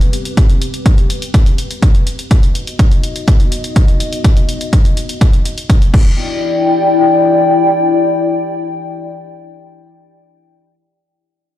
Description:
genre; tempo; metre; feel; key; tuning
melodic techno; 124 BPM; 4/4; straight; E minor; A4 = 441 Hz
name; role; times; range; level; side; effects
dark analog pad; sustained chords; 0.0-10.1 s; B3 to G5; -16 LUFS; left 2 dB; chorus, sidechain pumping
punchy analog drum machine; drums; 0.0-6.0 s; crash cymbal, hi-hat; -25 LUFS; left 1 dB; none
electronic kick drum; drums; 0.4-6.0 s; none; -10 LUFS; equal; none
room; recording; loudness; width
light reverb, digital ambience; played on a big sound system in a bare room, stone room reverb; -10 LUFS; side -12 dB against mid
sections
0.0-6.2 A section; 6.2-10.1 B section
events
none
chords
0.0 Gadd11/C; 2.3 B; 5.9 Em7

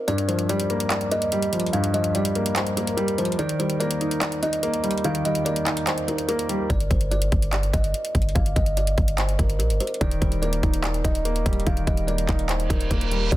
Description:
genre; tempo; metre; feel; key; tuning
hip hop, trap; 145 BPM; 4/4; half-time; unclear; A4 = 440 Hz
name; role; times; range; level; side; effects
kalimba; melody; 0.0-13.4 s; Bb4 to F5; -27 LUFS; equal; low-pass filter
dark concert grand piano; accompaniment; 0.1-6.7, 10.0-13.4 s; G2 to Eb4; -25 LUFS; equal; low-pass filter
trap drum kit; drums; 0.1-13.4 s; handclaps, hi-hat, kick drum; -25 LUFS; equal; none
clean 808-style bass; bass; 6.7-13.4 s; Eb1 to Bb1; -24 LUFS; equal; none
reverse cymbal; sound effects; 12.6-13.3 s; none; -30 LUFS; right 6 dB; none
room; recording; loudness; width
digital ambience; dense, heavily limited modern master; -21 LUFS; side -15 dB against mid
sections
0.0-13.3 A section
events
break 0.1-6.7; reverse cymbal 12.6-13.3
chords
0.1 Gm7; 3.4 Eb; 6.7 G5; 10.0 Eb

